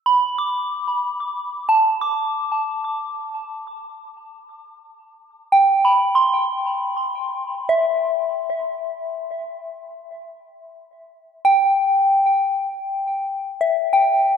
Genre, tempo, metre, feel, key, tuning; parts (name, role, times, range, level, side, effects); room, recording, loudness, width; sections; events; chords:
ambient; 56 BPM; 3/4; straight; E minor; A4 = 441 Hz
soft synth bell; solo; 0.0-14.4 s; E5 to D6; -18 LUFS; equal; chorus, phaser, analog delay
wet plate reverb, RT60 2.8 s; echo-heavy mix; -18 LUFS; side -7 dB against mid
0.0-14.4 A section
0.0 E5; 3.9 Am7; 10.4 Em